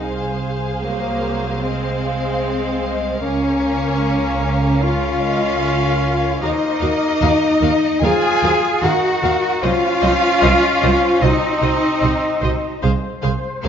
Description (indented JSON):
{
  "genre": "cinematic",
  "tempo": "75 BPM",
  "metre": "4/4",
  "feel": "rubato",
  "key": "Bb minor",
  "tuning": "A4 = 440 Hz",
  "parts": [
    { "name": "rich studio violin section", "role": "melody", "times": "0.0-13.7 s", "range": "Eb5 to F5", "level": "-30 LUFS", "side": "left 4 dB", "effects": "none" },
    { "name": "mellow hollow flute section", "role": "second line", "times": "0.0-13.7 s", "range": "Bb4 to Ab5", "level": "-28 LUFS", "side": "left 2 dB", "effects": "none" },
    { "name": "rich studio viola section", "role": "accompaniment", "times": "0.0-13.7 s", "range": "Gb3 to C5", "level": "-27 LUFS", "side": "right 1 dB", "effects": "none" },
    { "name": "warm studio double bass section", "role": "bass", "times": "0.0-13.7 s", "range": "C2 to Eb2", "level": "-22 LUFS", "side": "right 3 dB", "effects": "none" },
    { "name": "mellow cor anglais", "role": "second line", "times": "0.8-13.7 s", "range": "Gb3 to F4", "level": "-25 LUFS", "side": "right 1 dB", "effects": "none" },
    { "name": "rich studio violin section", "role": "second line", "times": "0.8-13.7 s", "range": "Bb4 to Ab5", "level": "-24 LUFS", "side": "left 4 dB", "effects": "none" },
    { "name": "dark French horn section", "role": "sustained chords", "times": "0.8-13.7 s", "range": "Bb3 to Ab4", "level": "-23 LUFS", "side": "left 4 dB", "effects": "none" },
    { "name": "rich studio cello section", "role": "bass", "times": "0.8-13.7 s", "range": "Bb3 to Ab4", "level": "-21 LUFS", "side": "right 1 dB", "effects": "none" }
  ],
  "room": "moderate scoring stage reverb, RT60 1.9 s",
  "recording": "nothing above 7.5 kHz",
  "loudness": "-15 LUFS",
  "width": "side -8 dB against mid",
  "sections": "0.0-13.7 A section",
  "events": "none",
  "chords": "0.0 Fm/C; 3.2 Bbm/Db; 6.4 Ebmadd9; 9.6 Cdim; 12.8 Fm/C (rootless)",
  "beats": "| 0.01 0.82 1.62 2.42 | 3.22 4.02 4.82 5.62 | 6.41 7.21 8.03 8.83 | 9.63 10.42 11.22 12.03 | 12.83 13.63"
}